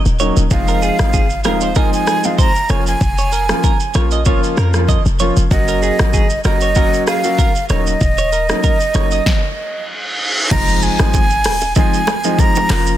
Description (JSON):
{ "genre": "afrobeats", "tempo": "96 BPM", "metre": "4/4", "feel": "swing 55% on 16ths", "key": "unclear", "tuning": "A4 = 440 Hz", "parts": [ { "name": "short 808-style bass", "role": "bass", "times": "0.1-13.0 s", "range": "Eb1 to F2", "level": "-17 LUFS", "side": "equal", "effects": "none" }, { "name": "deep house drum kit", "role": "drums", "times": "0.1-13.0 s", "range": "crash cymbal, handclaps, hi-hat, kick drum, rim click, shaker, snare drum", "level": "-17 LUFS", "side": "equal", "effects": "soft clipping on snare" }, { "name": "clear baby grand piano", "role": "accompaniment", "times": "0.2-13.0 s", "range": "F3 to Gb4", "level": "-20 LUFS", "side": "equal", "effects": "none" }, { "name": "direct-recorded clean electric guitar", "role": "riff", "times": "0.2-9.2 s", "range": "Ab4 to Eb5", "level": "-24 LUFS", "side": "right 6 dB", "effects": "lush chorus, digital delay" }, { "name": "breathy mellow jazz flute", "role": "melody", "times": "0.5-13.0 s", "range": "Eb5 to Bb5", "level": "-19 LUFS", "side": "right 1 dB", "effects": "none" }, { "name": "reverse cymbal and impact", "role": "sound effects", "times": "9.7-13.0 s", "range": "none", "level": "-21 LUFS", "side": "right 1 dB", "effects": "none" }, { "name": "congas and bongos", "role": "percussion", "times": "10.5-12.7 s", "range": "none", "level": "-24 LUFS", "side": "right 7 dB", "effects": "none" } ], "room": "little or no reverb", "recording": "dense, heavily limited modern master", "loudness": "-12 LUFS", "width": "side -12 dB against mid", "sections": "0.0-10.5 A section; 10.5-13.0 B section", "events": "stop 9.3-10.5; reverse cymbal 9.7-10.5; impact 10.5-13.0", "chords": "0.0 Ebm7; 0.5 Fm7; 2.7 Bbm/F; 5.5 Gb; 7.7 Ebm7; 10.5 Fm7" }